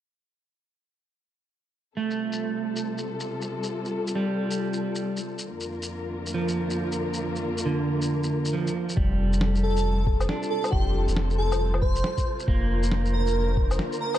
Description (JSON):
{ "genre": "future garage", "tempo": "137 BPM", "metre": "4/4", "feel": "swing 62% on 16ths", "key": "unclear", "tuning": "A4 = 439 Hz", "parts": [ { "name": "electric guitar at the edge of break-up", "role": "accompaniment", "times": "2.0-13.5 s", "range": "D3 to D4", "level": "-29 LUFS", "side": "right 2 dB", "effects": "vintage 12-bit sampler grit, sidechain pumping, tape echo" }, { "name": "warm studio string section", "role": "sustained chords", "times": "2.0-14.2 s", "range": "F2 to Bb4", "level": "-31 LUFS", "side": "left 2 dB", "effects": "sidechain pumping" }, { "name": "electronic shaker, snare drum and woodblock", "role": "drums", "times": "2.1-14.2 s", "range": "none", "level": "-32 LUFS", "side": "left 1 dB", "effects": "overdrive, low-pass filter on perc, low-pass filter on snare" }, { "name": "warm sub bass", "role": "bass", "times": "9.0-13.8 s", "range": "F1", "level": "-24 LUFS", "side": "equal", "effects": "tube saturation" }, { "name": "electronic kick drum", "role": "drums", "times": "9.0-13.7 s", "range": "none", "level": "-25 LUFS", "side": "equal", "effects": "overdrive" }, { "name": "wind-like tuned noise texture", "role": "texture", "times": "10.0-14.2 s", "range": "C5", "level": "-40 LUFS", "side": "right 3 dB", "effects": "built-in reverb" }, { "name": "airy dreamy lead", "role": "melody", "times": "9.6-14.2 s", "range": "G4 to C5", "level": "-29 LUFS", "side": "right 1 dB", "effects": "chorus, tape echo" } ], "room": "digital ambience", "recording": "dark, warm production", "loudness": "-24 LUFS", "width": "side -12 dB against mid", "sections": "2.0-9.0 A section; 9.0-14.2 B section", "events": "none", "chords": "2.0 Fadd9; 5.5 Bb/F; 9.0 Fadd9; 12.5 Bb/F" }